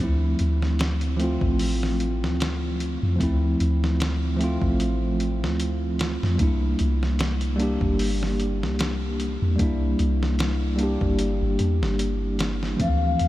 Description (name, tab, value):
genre	trip hop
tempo	75 BPM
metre	4/4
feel	swing 55% on 16ths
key	D minor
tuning	A4 = 440 Hz
part	bell-like tine electric piano	accompaniment	0.0-13.3 s	E3 to G4	-25 LUFS	equal	harmonic tremolo, tape echo
part	soft 808-style bass	bass	0.0-13.3 s	G1 to F2	-24 LUFS	equal	none
part	trip hop sampler-style drum kit	drums	0.4-13.3 s	hi-hat, kick drum, snare drum	-29 LUFS	equal	small room ambience
part	mellow hollow baroque flute	melody	12.8-13.3 s	F5	-25 LUFS	left 8 dB	none
room	moderate huge ambient reverb, RT60 7.6 s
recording	dreamy mix soaked in reverb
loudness	-21 LUFS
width	side -15 dB against mid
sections	0.0-13.3 A section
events	none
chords	0.0 Dm7; 6.4 C7